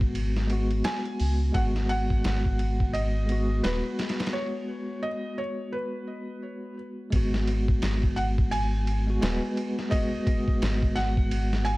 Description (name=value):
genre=trip hop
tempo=86 BPM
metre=4/4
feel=swing 60% on 16ths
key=G# minor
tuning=A4 = 440 Hz
part: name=bell-like tine electric piano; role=accompaniment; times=0.0-11.8 s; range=G#3 to B4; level=-31 LUFS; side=left 1 dB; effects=tremolo, tape echo
part: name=round analog bass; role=bass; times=0.0-11.8 s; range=D#1 to C#2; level=-26 LUFS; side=equal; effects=none
part: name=trip hop sampler-style drum kit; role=drums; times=0.0-11.8 s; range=hi-hat, kick drum, ride cymbal, snare drum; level=-29 LUFS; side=equal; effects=none
part: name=felt-muted upright piano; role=melody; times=0.8-11.8 s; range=B4 to G#5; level=-34 LUFS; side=right 1 dB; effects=tape echo
room=little or no reverb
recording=none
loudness=-24 LUFS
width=side -20 dB against mid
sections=0.0-7.1 A section; 7.1-11.8 B section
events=break 4.3-7.1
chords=0.0 G#m7